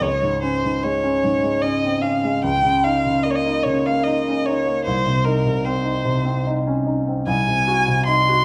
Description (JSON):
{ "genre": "classical, romantic duo for violin and grand piano", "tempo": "74 BPM", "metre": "3/4", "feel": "rubato", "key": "unclear", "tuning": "A4 = 436 Hz", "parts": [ { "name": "rich violin", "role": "melody", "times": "0.0-8.4 s", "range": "Bb4 to C6", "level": "-23 LUFS", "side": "equal", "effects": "none" }, { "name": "warm grand piano", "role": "accompaniment", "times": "0.0-8.4 s", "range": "C2 to Gb4", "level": "-23 LUFS", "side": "equal", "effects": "none" } ], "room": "wet recital hall reverb, RT60 1.3 s", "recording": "none", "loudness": "-20 LUFS", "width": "mono", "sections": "0.0-8.4 A section", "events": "none", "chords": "0.0 Db5; 2.4 Eb5/Db; 4.9 Cm; 7.3 Ab7/C" }